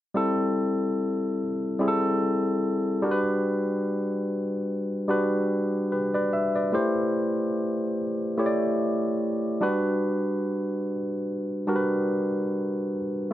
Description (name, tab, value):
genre	soul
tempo	73 BPM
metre	4/4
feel	swing 54% on 16ths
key	G major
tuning	A4 = 445 Hz
part	barky tine electric piano	solo	0.1-13.3 s	G3 to E5	-24 LUFS	equal	overdrive
room	light reverb, digital ambience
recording	dark, warm production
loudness	-24 LUFS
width	side -13 dB against mid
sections	0.2-6.7 A section; 6.7-13.3 B section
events	none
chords	0.2 Am7; 3.0 Gmaj7; 6.7 Am7; 9.6 Gmaj7